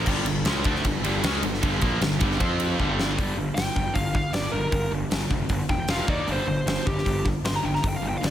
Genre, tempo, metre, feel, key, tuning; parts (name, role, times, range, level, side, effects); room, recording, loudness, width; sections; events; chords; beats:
hard rock; 155 BPM; 4/4; straight; G minor; A4 = 440 Hz
overdriven tonewheel organ; sustained chords; 0.0-3.2 s; F3 to A4; -40 LUFS; equal
distorted electric guitar; riff; 0.0-8.3 s; F2 to F4; -29 LUFS; equal; overdrive
heavy high-gain guitar; riff; 0.0-3.2 s; G2 to F4; -30 LUFS; equal; distortion
fuzz picked electric bass; bass; 0.0-8.3 s; E1 to F2; -28 LUFS; equal; overdrive
huge arena drum kit; drums; 0.1-8.3 s; crash cymbal, hi-hat, kick drum, ride cymbal, snare drum; -26 LUFS; equal
bluesy overdriven lead guitar; melody; 3.5-8.3 s; G4 to C6; -29 LUFS; equal; distortion
studio ambience; -22 LUFS; side -11 dB against mid
0.0-3.2 A section; 3.2-8.3 B section
drum fill 2.8-3.2; lead electric guitar solo 3.2-8.3
0.0 Gm; 2.4 F5; 2.8 G5; 5.9 F5; 6.1 Eb5; 6.3 G5
| 0.07 0.46 0.85 1.24 | 1.62 2.01 2.40 2.78 | 3.17 3.56 3.95 4.33 | 4.72 5.11 5.50 5.89 | 6.28 6.67 7.05 7.44 | 7.83 8.22